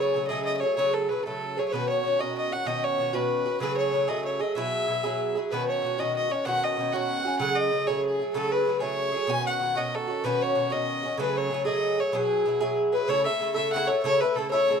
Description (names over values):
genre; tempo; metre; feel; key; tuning
celtic folk; 127 BPM (dotted quarters); 6/8; straight; unclear; A4 = 440 Hz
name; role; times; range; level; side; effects
rich fiddle; melody; 0.0-14.8 s; G#4 to G#5; -28 LUFS; left 1 dB; none
mellow hollow baroque flute; second line; 0.0-14.8 s; G#4 to G#5; -30 LUFS; left 6 dB; none
Irish bouzouki; accompaniment; 0.0-14.8 s; B2 to A4; -28 LUFS; right 4 dB; none
room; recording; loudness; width
light reverb; dark, warm production; -24 LUFS; side -6 dB against mid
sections
0.0-5.5 A section; 5.5-13.1 A section; 13.1-14.8 B section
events
none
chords
0.0 F#madd9; 1.7 Badd9; 3.6 F#madd9; 4.6 Eadd9; 5.5 Badd9; 7.4 F#madd9; 9.3 Badd9; 11.2 F#madd9; 12.1 Eadd9; 13.1 A